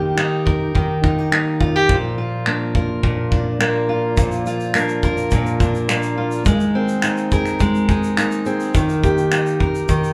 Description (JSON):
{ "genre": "acoustic pop", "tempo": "105 BPM", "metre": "4/4", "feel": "straight", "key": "Bb mixolydian", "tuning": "A4 = 440 Hz", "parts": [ { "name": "fingerpicked steel-string acoustic guitar", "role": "accompaniment", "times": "0.0-10.1 s", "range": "Bb2 to Bb4", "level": "-21 LUFS", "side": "equal", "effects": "none" }, { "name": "flamenco guitar", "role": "arpeggios", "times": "0.0-10.1 s", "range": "Eb3 to Ab4", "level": "-30 LUFS", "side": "equal", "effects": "none" }, { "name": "loose indie drum kit", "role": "drums", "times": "0.2-10.1 s", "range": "finger snaps, kick drum, shaker", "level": "-23 LUFS", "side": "equal", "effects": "none" } ], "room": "moderate large studio reverb, RT60 1.2 s", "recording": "band playing live in one room", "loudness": "-19 LUFS", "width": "mono", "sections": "0.0-10.1 A section", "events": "none", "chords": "0.0 Eb; 1.9 Bb; 6.5 Abadd9; 8.7 Eb", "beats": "0.18 0.75 1.32 | 1.89 2.46 3.04 3.61 | 4.18 4.75 5.32 5.89 | 6.46 7.03 7.61 8.18 | 8.75 9.32 9.89" }